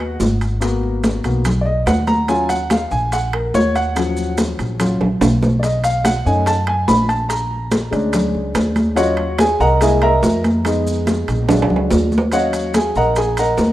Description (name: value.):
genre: Afro-Cuban jazz.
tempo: 144 BPM.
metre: 4/4.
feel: straight.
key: Eb minor.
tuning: A4 = 440 Hz.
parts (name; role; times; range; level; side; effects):
warm baby grand piano; accompaniment; 0.0-13.7 s; F3 to B5; -18 LUFS; equal; none.
upright bass; bass; 0.0-13.7 s; Ab1 to F#2; -20 LUFS; equal; none.
congas; percussion; 0.0-13.7 s; none; -20 LUFS; equal; none.
bongos; percussion; 0.2-13.7 s; none; -30 LUFS; left 4 dB; none.
maracas; percussion; 0.2-13.7 s; none; -34 LUFS; right 1 dB; none.
timbales; percussion; 0.2-13.7 s; none; -24 LUFS; right 4 dB; none.
room: light reverb, small room reverb.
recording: rough home demo mix.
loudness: -14 LUFS.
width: side -14 dB against mid.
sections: 0.0-12.3 A section; 12.3-13.7 A section.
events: grand piano solo 0.0-13.7; drum fill 5.0-5.6, 11.5-12.3.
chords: 0.0 Abm7; 2.3 Ebm7; 5.6 B7; 7.3 Bb7#9; 9.0 Ebm7; 9.8 C7alt; 10.7 Fm7b5; 11.5 Bb7alt; 12.3 Ebm7.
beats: 0.20 | 0.62 1.04 1.46 1.87 | 2.29 2.71 3.13 3.54 | 3.96 4.38 4.80 5.22 | 5.63 6.05 6.47 6.89 | 7.30 7.72 8.14 8.56 | 8.98 9.40 9.81 10.23 | 10.65 11.07 11.49 11.91 | 12.32 12.74 13.16 13.58.